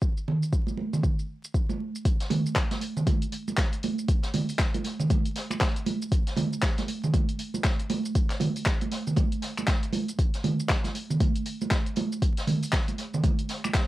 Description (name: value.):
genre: house.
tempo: 118 BPM.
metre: 4/4.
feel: swing 60% on 16ths.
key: none.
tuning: none.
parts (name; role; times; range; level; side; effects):
deep house drum kit; drums; 0.0-13.9 s; finger snaps, handclaps, hi-hat, shaker; -33 LUFS; left 1 dB; overdrive, cassette tape.
electronic kick drum; drums; 0.0-13.9 s; none; -25 LUFS; equal; overdrive, cassette tape.
congas; percussion; 0.3-13.7 s; none; -29 LUFS; right 3 dB; none.
jazz brush drum kit; drums; 2.1-13.9 s; hi-hat, snare drum; -38 LUFS; equal; sidechain pumping on hats, high-pass filter on hats, cassette tape, high-pass filter on snare, high-pass filter on room.
room: moderate booth ambience, RT60 0.2 s.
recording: home recording on cassette, vinyl crackle.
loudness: -25 LUFS.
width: side -16 dB against mid.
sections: 0.0-2.1 A section; 2.1-13.9 B section.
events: drop 2.1-13.9.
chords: none.